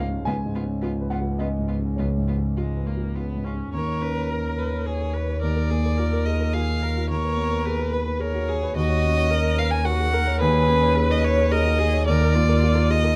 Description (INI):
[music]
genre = neoclassical piano and strings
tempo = 108 BPM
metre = 3/4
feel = rubato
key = unclear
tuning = A4 = 441 Hz
[part]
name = warm violin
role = melody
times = 0.0-13.2 s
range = F4 to Ab5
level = -28 LUFS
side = equal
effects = none
[part]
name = clear viola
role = accompaniment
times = 0.0-13.2 s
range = Ab3 to C#5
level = -33 LUFS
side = equal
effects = none
[part]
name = dark concert grand piano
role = accompaniment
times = 0.0-13.2 s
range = Db2 to Bb5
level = -28 LUFS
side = equal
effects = none
[part]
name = warm double bass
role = bass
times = 0.0-13.2 s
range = Db2 to D#2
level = -27 LUFS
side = equal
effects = none
[sound]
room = light reverb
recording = none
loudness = -23 LUFS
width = mono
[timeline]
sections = 0.0-3.7 A section; 3.7-13.2 B section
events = none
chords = 0.3 Db7; 3.7 Bmaj13/D#; 5.4 Bb/Eb; 7.1 Abm/Eb; 12.1 Bb/Eb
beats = | 0.27 0.82 1.39 | 1.98 2.57 3.16 | 3.74 4.30 4.86 | 5.42 5.98 6.54 | 7.10 7.65 8.20 | 8.75 9.30 9.85 | 10.40 10.95 11.50 | 12.06 12.62